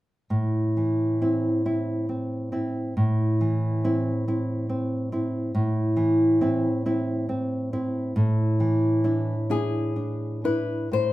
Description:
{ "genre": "romantic duo for nylon-string guitar and classical guitar", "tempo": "42-48 BPM (dotted quarters)", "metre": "6/8", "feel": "rubato", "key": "A minor", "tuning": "A4 = 438 Hz", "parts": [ { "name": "nylon-string guitar", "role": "accompaniment", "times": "0.3-11.1 s", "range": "A2 to E4", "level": "-22 LUFS", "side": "equal", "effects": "none" }, { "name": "nylon-string guitar", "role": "melody", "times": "9.5-11.1 s", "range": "G#4 to C5", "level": "-27 LUFS", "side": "left 7 dB", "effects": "none" } ], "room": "moderate large studio reverb, RT60 0.9 s", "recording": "band playing live in one room", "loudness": "-22 LUFS", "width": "side -16 dB against mid", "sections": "0.3-10.9 A section", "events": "none", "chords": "0.3 Am; 8.2 E7/A" }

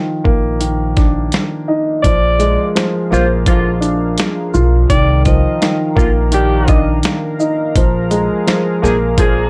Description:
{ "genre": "hip hop, boom-bap hip-hop", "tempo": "84 BPM", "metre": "4/4", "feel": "swing 58% on 16ths", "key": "unclear", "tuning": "A4 = 440 Hz", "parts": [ { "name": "dark upright piano", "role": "accompaniment", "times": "0.0-9.5 s", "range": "Eb3 to F4", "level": "-19 LUFS", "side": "equal", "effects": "cassette tape, high-pass filter, low-pass filter" }, { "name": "upright bass", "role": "bass", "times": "0.3-9.5 s", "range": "Bb1 to C2", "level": "-19 LUFS", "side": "equal", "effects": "none" }, { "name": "boom bap sampler-style drum kit", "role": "drums", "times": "0.3-9.4 s", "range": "hi-hat, kick drum, shaker, snare drum", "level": "-18 LUFS", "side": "equal", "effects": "none" }, { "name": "breathy tenor saxophone", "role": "melody", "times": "2.0-6.9 s", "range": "C5 to Eb5", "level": "-20 LUFS", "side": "equal", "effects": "high-pass filter, low-pass filter, slapback echo" }, { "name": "warm analog pad", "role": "sustained chords", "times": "2.0-9.5 s", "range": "Eb3 to Bb5", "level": "-27 LUFS", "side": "equal", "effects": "chorus, high-pass filter, low-pass filter" }, { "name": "bright saxophone section", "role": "stabs", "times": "3.1-9.5 s", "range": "D3 to Ab4", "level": "-20 LUFS", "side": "equal", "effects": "high-pass filter, low-pass filter, slapback echo" } ], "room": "light reverb", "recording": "none", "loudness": "-14 LUFS", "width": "mono", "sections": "0.0-2.0 A section; 2.0-9.5 B section", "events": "none", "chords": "0.0 Cm11 (rootless); 2.0 Bb7; 4.9 Cm11; 7.8 Bb7" }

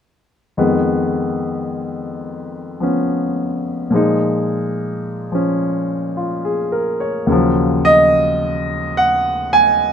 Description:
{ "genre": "solo jazz", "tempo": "72 BPM", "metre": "4/4", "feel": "swing 67% on 8ths", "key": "Eb minor", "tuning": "A4 = 439 Hz", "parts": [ { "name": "warm baby grand piano", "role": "solo", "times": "0.6-9.9 s", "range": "Eb2 to Ab5", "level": "-15 LUFS", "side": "equal", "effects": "none" } ], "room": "light reverb", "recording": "none", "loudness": "-15 LUFS", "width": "side -7 dB against mid", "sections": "0.6-7.3 A section; 7.3-9.9 B section", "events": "none", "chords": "0.6 Fm7b5; 3.9 Bb7sus4; 7.3 Ebm9" }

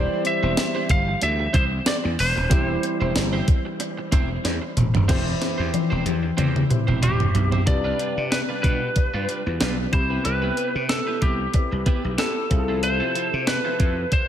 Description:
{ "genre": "1980s-style pop", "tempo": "93 BPM", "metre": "4/4", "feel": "swing 55% on 16ths", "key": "C major", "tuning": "A4 = 442 Hz", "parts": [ { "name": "lightly driven lead guitar", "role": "melody", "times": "0.0-14.3 s", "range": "G4 to F5", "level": "-25 LUFS", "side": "equal", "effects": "slapback echo" }, { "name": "warm grand piano", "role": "accompaniment", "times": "0.0-14.3 s", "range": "C3 to B5", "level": "-29 LUFS", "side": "left 1 dB", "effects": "slapback echo" }, { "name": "twelve-string electric guitar", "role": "riff", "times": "0.0-14.2 s", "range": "F3 to C5", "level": "-31 LUFS", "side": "right 3 dB", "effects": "lush chorus, slapback echo" }, { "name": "gritty slap bass", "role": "bass", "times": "0.0-14.0 s", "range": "Eb1 to C3", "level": "-26 LUFS", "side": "equal", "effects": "overdrive" }, { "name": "clean 12-bit digital drum machine", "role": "drums", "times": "0.2-14.3 s", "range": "crash cymbal, hi-hat, kick drum, snare drum, tambourine, toms", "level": "-22 LUFS", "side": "equal", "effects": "none" }, { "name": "cowbell", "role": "percussion", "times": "0.6-14.3 s", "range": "none", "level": "-42 LUFS", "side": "right 6 dB", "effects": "none" } ], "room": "moderate lush hall reverb, RT60 2.0 s", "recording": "big arena sound", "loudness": "-20 LUFS", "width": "side -10 dB against mid", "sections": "0.0-5.1 A section; 5.1-7.7 B section; 7.7-14.3 C section", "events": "drum fill 4.4-5.1, 5.1-7.7", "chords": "0.0 C; 5.1 C/E; 7.7 G7/C; 9.9 Cmaj7; 12.5 Fmaj7/C" }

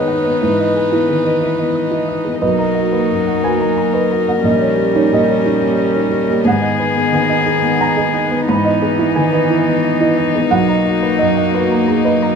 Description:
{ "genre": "neoclassical piano and strings", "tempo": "89 BPM", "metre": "3/4", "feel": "rubato", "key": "unclear", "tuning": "A4 = 438 Hz", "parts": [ { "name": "dark violin", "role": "melody", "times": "0.0-12.4 s", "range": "D#4 to B4", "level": "-18 LUFS", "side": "left 6 dB", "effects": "none" }, { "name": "warm cello", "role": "second line", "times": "0.0-12.4 s", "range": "D#3 to G3", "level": "-22 LUFS", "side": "right 5 dB", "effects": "none" }, { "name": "dark viola", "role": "accompaniment", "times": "0.0-12.4 s", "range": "A#3 to D#4", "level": "-24 LUFS", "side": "right 3 dB", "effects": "none" }, { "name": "felt-muted upright piano", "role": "accompaniment", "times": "0.0-12.4 s", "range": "A#1 to B5", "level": "-18 LUFS", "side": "right 1 dB", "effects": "none" }, { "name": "warm chamber string section", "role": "sustained chords", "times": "0.0-12.4 s", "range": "E3 to D#5", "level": "-25 LUFS", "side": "left 1 dB", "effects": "none" }, { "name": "harp-like synth pluck", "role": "arpeggios", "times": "0.1-12.3 s", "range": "D#4 to A#5", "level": "-22 LUFS", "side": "right 2 dB", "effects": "chorus" } ], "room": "light reverb", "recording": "minimal, uncompressed stereo recording", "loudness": "-13 LUFS", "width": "side -6 dB against mid", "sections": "0.0-12.4 A section", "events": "none", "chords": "0.4 Emaj7/G#; 2.4 Bmaj7; 4.4 D#7/A#; 6.5 G#m7; 8.5 Emaj7/G#; 10.5 Bmaj7" }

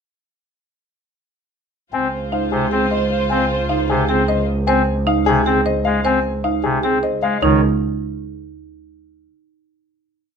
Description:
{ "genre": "classical, minimalist pattern music", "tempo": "306 BPM (eighths)", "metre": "7/8", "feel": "straight", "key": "Db major", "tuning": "A4 = 440 Hz", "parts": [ { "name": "clear concert grand piano", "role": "melody", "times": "1.9-7.6 s", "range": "Ab4 to Ab5", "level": "-23 LUFS", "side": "left 6 dB", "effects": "none" }, { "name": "mellow soprano saxophone", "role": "second line", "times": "1.9-4.4 s", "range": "C5", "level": "-25 LUFS", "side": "right 6 dB", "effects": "none" }, { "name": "pipe organ, soft reed", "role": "accompaniment", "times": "1.9-7.6 s", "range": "C3 to C4", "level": "-20 LUFS", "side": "left 3 dB", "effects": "none" }, { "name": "rich symphonic string section", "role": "sustained chords", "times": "1.9-4.4 s", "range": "F4 to C5", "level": "-27 LUFS", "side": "left 4 dB", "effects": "none" }, { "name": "rich symphonic double bass section", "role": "bass", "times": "1.9-7.6 s", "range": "Db2", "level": "-21 LUFS", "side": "right 1 dB", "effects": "none" }, { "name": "marimba with medium mallets", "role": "arpeggios", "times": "2.3-7.6 s", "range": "Eb4 to C5", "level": "-22 LUFS", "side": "right 6 dB", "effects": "none" } ], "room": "moderate large studio reverb, RT60 0.9 s", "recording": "none", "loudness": "-16 LUFS", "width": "side -6 dB against mid", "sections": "1.9-7.4 A section; 7.4-8.8 final chord", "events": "none", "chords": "1.9 Dbmaj7; 7.4 Dbsus2" }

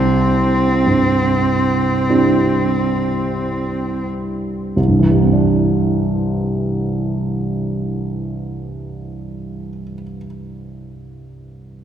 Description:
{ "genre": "classical, impressionist duo for cello and grand piano", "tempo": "42-53 BPM", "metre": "4/4", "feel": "rubato", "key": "C major", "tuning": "A4 = 440 Hz", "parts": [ { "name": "rich cello", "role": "melody", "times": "0.0-4.1 s", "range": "C4", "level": "-18 LUFS", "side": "right 1 dB", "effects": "none" }, { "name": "dark grand piano", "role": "accompaniment", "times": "0.0-11.8 s", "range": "C2 to E4", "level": "-18 LUFS", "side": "right 1 dB", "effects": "none" } ], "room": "wet church reverb, RT60 3.2 s", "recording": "recorded in a church or concert hall", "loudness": "-15 LUFS", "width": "side -9 dB against mid", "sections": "0.0-4.8 A section; 4.8-10.1 B section", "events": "slowing down 0.0-4.8", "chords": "0.0 Cadd9" }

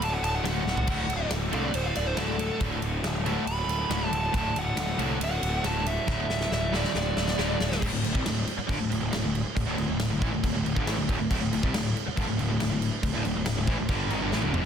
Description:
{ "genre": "hard rock", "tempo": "138 BPM", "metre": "4/4", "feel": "straight", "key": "D mixolydian", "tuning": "A4 = 440 Hz", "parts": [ { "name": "high-gain lead guitar", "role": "melody", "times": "0.0-7.8 s", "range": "A4 to B5", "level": "-32 LUFS", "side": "right 1 dB", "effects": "distortion, tape echo" }, { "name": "tight distorted guitar", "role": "riff", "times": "0.0-14.6 s", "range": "D2 to F#4", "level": "-34 LUFS", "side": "left 1 dB", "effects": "distortion" }, { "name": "fuzz picked electric bass", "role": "bass", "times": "0.0-14.6 s", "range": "D1 to C2", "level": "-31 LUFS", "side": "equal", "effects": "overdrive" }, { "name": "big rock drum kit", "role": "drums", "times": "0.0-14.6 s", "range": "crash cymbal, kick drum, ride cymbal, snare drum, toms", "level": "-30 LUFS", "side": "equal", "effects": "none" }, { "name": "cranked stack guitar", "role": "riff", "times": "0.4-14.6 s", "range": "D2 to G3", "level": "-33 LUFS", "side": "left 9 dB", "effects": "overdrive, spring reverb" }, { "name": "distorted electric guitar", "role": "riff", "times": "0.4-14.7 s", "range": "D2 to G3", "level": "-34 LUFS", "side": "right 9 dB", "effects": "overdrive" } ], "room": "light reverb, small room reverb", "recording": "dense, heavily limited modern master", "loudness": "-25 LUFS", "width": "side -8 dB against mid", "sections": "0.0-7.8 A section; 7.8-14.7 B section", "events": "lead electric guitar solo 0.0-7.8; drum fill 0.7, 6.1-7.8, 14.3-14.7", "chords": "0.0 D; 7.8 D5" }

